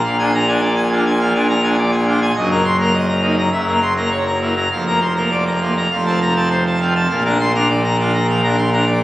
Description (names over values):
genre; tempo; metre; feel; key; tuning
classical, organ toccata; 102 BPM; 4/4; straight; Bb major; A4 = 440 Hz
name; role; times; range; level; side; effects
pipe organ, full organ; solo; 0.0-9.0 s; F1 to C6; -14 LUFS; equal; none
room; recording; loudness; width
wet church reverb, RT60 3.5 s; recorded on a phone in the room, studio reverb, compression; -14 LUFS; side -15 dB against mid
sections
0.0-9.0 A section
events
none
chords
0.0 Bb7; 2.4 Ebm/Gb; 3.5 Gb7; 4.7 Bb/F; 5.9 F; 7.1 Bb